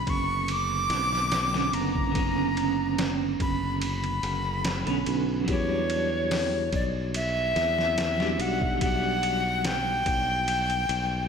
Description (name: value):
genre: trip hop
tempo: 72 BPM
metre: 4/4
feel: straight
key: B harmonic minor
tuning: A4 = 440 Hz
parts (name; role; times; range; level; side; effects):
- breathy bright jazz flute; melody; 0.0-11.3 s; C#5 to D6; -27 LUFS; equal; tape echo
- clean electric guitar; accompaniment; 0.0-11.3 s; D3 to D4; -31 LUFS; right 3 dB; tremolo, tape echo
- modern bright fingered electric bass; bass; 0.0-11.3 s; F#1 to E2; -31 LUFS; left 1 dB; none
- trip hop sampler-style drum kit; drums; 0.1-11.1 s; hi-hat, kick drum, ride cymbal, snare drum; -32 LUFS; equal; none
room: wet lush hall reverb, RT60 1.8 s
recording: dreamy mix soaked in reverb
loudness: -24 LUFS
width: side -6 dB against mid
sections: 0.0-11.3 A section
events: none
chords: 0.0 Bmadd9; 5.5 Em7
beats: 0.48 1.31 | 2.15 2.98 3.81 4.65 | 5.48 6.32 7.15 7.98 | 8.81 9.65 10.48